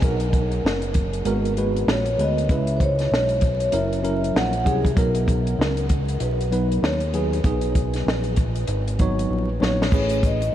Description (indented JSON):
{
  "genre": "hip hop, jazz-hop",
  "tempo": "97 BPM",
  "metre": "4/4",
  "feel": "swing 61% on 16ths",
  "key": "B major",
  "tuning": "A4 = 439 Hz",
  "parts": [
    { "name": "vibraphone with soft mallets", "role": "melody", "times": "0.0-10.5 s", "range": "G#4 to F#5", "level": "-26 LUFS", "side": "equal", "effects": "analog delay" },
    { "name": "tine electric piano", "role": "accompaniment", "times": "0.0-10.5 s", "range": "F#3 to C#5", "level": "-26 LUFS", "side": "right 1 dB", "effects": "medium stereo tremolo" },
    { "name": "fat analog bass", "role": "bass", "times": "0.0-10.5 s", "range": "F#1 to D#2", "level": "-24 LUFS", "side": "equal", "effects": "none" },
    { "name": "compact cocktail drum kit", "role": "drums", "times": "0.0-10.5 s", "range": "crash cymbal, hi-hat, kick drum, snare drum", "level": "-24 LUFS", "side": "equal", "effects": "vintage 12-bit sampler grit" },
    { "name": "tube shaker", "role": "percussion", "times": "9.9-10.5 s", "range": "none", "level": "barely audible", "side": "none", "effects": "none" }
  ],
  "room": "moderate huge ambient reverb, RT60 8.8 s",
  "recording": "dreamy mix soaked in reverb, vinyl crackle",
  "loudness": "-19 LUFS",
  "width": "side -11 dB against mid",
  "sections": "0.0-9.9 A section",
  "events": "drum fill 9.3-9.9",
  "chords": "0.0 Bmaj7; 1.3 G#m9; 2.5 C#m7; 3.7 F#7; 5.0 Bmaj7; 9.9 Amaj9"
}